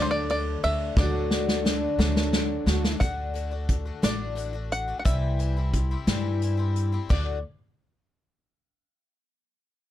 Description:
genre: indie folk with a building arrangement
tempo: 59 BPM (dotted quarters)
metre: 6/8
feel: straight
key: D mixolydian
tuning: A4 = 440 Hz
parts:
  - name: bluegrass banjo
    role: melody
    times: 0.0-7.4 s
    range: C5 to F#5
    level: -31 LUFS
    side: equal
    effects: none
  - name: warm French horn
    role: second line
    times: 0.0-3.0 s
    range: D4 to F#4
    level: -32 LUFS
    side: right 10 dB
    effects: none
  - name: picked twelve-string acoustic guitar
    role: accompaniment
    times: 0.0-7.4 s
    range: C3 to F#4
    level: -33 LUFS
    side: left 8 dB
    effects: none
  - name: warm upright piano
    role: accompaniment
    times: 0.0-3.0 s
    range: D2 to D5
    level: -37 LUFS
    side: left 3 dB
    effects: none
  - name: upright bass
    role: bass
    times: 0.0-7.4 s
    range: A1 to G2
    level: -28 LUFS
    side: equal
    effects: none
  - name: unplugged drum kit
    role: drums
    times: 0.3-7.3 s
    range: crash cymbal, hi-hat, kick drum, ride cymbal, snare drum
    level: -26 LUFS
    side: equal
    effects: none
room: little or no reverb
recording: none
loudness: -23 LUFS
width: side -12 dB against mid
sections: 0.0-3.0 A section; 3.0-7.1 B section; 7.1-9.1 C section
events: drum fill 1.0-3.0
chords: 0.0 D; 5.1 C; 7.1 D

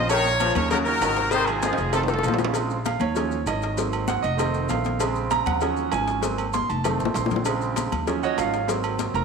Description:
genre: latin, salsa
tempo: 195 BPM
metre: 4/4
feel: straight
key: Bb minor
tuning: A4 = 440 Hz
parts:
  - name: brilliant horn section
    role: melody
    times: 0.0-2.4 s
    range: F4 to Db5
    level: -24 LUFS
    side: equal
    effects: none
  - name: bright grand piano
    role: accompaniment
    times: 0.0-9.2 s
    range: Bb2 to C6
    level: -26 LUFS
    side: right 7 dB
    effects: none
  - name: upright bass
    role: bass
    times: 0.0-9.2 s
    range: F1 to Eb2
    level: -28 LUFS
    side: left 1 dB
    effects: none
  - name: warm trombone section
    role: second line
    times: 0.1-2.4 s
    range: Db3 to F3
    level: -28 LUFS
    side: left 7 dB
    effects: none
  - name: agogo bells and timbales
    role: percussion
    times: 0.1-9.2 s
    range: none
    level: -31 LUFS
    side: right 7 dB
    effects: none
  - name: congas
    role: percussion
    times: 0.1-9.1 s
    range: none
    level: -34 LUFS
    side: left 10 dB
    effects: none
  - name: cowbell and bongos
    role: percussion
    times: 0.1-9.2 s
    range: none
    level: -30 LUFS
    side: left 11 dB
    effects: none
  - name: maracas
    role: percussion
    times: 0.1-9.2 s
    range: none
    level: -40 LUFS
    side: left 11 dB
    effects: none
room: wet echo chamber reverb, RT60 1.8 s, small room ambience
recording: 1960s-style stereo with parts hard left and right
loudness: -21 LUFS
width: side -5 dB against mid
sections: 0.0-2.5 A section; 2.5-9.2 B section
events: drum fill 1.6-2.5, 6.5-7.5; grand piano solo 2.5-9.2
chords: 0.1 Bbm; 0.7 Ebm7; 1.3 Ab7; 1.9 F7; 2.5 Bbm7; 3.2 Ebm7; 3.8 Ab7; 4.4 F7; 5.0 Bbm7; 5.6 Ebm7; 6.2 Ab7; 6.8 F7; 7.5 Bbm7; 8.1 Ebm7; 8.7 Ab7

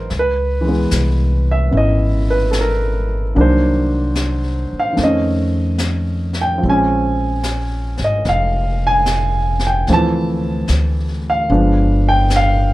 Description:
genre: jazz ballad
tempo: 74 BPM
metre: 4/4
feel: swing 68% on 8ths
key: unclear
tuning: A4 = 438 Hz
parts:
  - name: warm baby grand piano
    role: accompaniment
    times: 0.0-12.7 s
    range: Eb3 to A5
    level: -17 LUFS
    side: right 1 dB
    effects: none
  - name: upright bass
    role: bass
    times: 0.0-12.7 s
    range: F1 to F2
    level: -18 LUFS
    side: equal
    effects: none
  - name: jazz brush drum kit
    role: drums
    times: 0.1-12.7 s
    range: brushed snare drum, hi-hat, snare drum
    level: -28 LUFS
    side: left 2 dB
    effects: none
room: light reverb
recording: dark, warm production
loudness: -14 LUFS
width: side -17 dB against mid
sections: 0.0-12.7 A section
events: none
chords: 0.1 Dbm7; 3.3 Cm7b5; 5.0 F7b13; 6.6 Bbm9; 9.9 Dm9; 11.5 G7b9

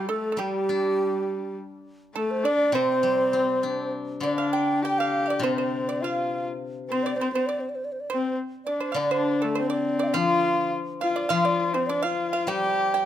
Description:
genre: chinese traditional, Chinese chamber ensemble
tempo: 102 BPM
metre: 2/4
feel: rubato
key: C zhi mode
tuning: A4 = 435 Hz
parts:
  - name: low xiao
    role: melody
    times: 0.0-13.0 s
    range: G4 to G5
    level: -26 LUFS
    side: right 2 dB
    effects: none
  - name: bright horsehead fiddle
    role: second line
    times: 0.0-13.1 s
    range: G3 to G4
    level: -29 LUFS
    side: left 4 dB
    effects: none
  - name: pipa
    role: second line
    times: 0.0-13.1 s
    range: G4 to G5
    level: -31 LUFS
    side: right 7 dB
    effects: none
  - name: steel-string zither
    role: accompaniment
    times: 0.4-13.1 s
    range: C3 to D4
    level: -28 LUFS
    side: left 4 dB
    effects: none
room: light reverb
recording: close, detailed microphones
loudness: -23 LUFS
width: side -11 dB against mid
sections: 0.0-9.0 A section; 9.0-13.1 B section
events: none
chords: none

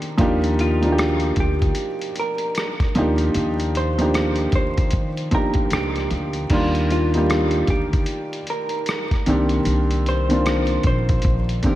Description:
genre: lo-fi hip hop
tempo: 76 BPM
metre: 4/4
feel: swing 62% on 16ths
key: Eb major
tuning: A4 = 440 Hz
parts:
  - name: felt-muted upright piano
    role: accompaniment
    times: 0.0-11.8 s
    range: D3 to G4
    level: -22 LUFS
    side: equal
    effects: low-pass filter
  - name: lo-fi sampler-style drum kit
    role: drums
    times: 0.0-11.8 s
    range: crash cymbal, hi-hat, kick drum, rim click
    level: -24 LUFS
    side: equal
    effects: none
  - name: upright bass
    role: bass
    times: 0.2-11.6 s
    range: Bb1 to Eb3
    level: -23 LUFS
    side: equal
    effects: none
  - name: vintage hollow-body jazz guitar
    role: melody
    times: 0.6-11.8 s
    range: F4 to C5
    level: -27 LUFS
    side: equal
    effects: wide subtle chorus, low-pass filter, tape echo
room: moderate lush hall reverb, RT60 2.4 s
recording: dreamy mix soaked in reverb, vinyl crackle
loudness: -18 LUFS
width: side -14 dB against mid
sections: 0.0-6.5 A section; 6.5-11.8 A section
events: none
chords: 0.2 Ebmaj7; 3.0 Ebmaj9; 6.5 Ebmaj7; 9.3 Cm9

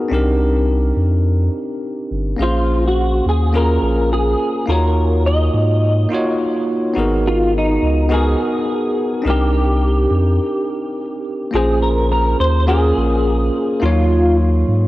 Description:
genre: sunset chillout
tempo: 105 BPM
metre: 4/4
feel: swing 57% on 16ths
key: unclear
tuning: A4 = 440 Hz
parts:
  - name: bell-like tine electric piano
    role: accompaniment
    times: 0.0-14.9 s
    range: Gb3 to F5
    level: -19 LUFS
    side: equal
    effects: auto-pan, cassette tape, tape echo
  - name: warm sub bass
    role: bass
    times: 0.1-14.9 s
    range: G1 to Ab2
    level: -16 LUFS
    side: equal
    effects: none
  - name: clean electric guitar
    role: melody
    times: 2.4-14.4 s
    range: Eb4 to Eb5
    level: -20 LUFS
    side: equal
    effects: ensemble chorus, cassette tape, tape echo
room: light reverb, digital ambience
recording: home recording on cassette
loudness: -14 LUFS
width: side -17 dB against mid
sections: 0.0-11.5 A section; 11.5-14.9 B section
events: break 10.4-11.5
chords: 0.1 Cm9; 2.4 Bbm9; 4.7 Ebm9; 7.0 Abm9; 9.3 Cm9; 11.5 Bbm9; 13.8 Ebm9

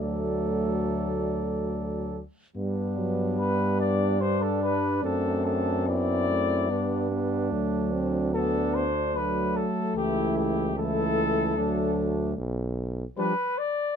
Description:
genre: classical, brass quintet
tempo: 73 BPM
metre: 3/4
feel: rubato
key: G major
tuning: A4 = 440 Hz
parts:
  - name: dark cornet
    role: melody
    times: 0.0-14.0 s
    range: G4 to D5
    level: -29 LUFS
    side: left 3 dB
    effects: none
  - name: mellow flugelhorn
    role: second line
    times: 0.0-13.3 s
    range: D4 to A4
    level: -34 LUFS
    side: right 10 dB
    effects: none
  - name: mellow French horn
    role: accompaniment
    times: 0.0-13.3 s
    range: F#3 to D4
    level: -30 LUFS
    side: left 5 dB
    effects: none
  - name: mellow trombone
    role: accompaniment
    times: 0.0-13.3 s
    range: E3 to B3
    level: -32 LUFS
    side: right 5 dB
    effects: none
  - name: bright bass trombone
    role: bass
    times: 0.0-13.0 s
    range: B1 to G2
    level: -30 LUFS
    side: right 1 dB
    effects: none
room: little or no reverb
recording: close, detailed microphones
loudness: -24 LUFS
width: side -7 dB against mid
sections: 0.0-2.6 A section; 2.6-14.0 B section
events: none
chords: 0.0 D; 2.6 G; 5.0 D7/F#; 6.7 G; 7.5 D; 10.0 A/C#; 11.6 D; 12.4 G/B (rootless)

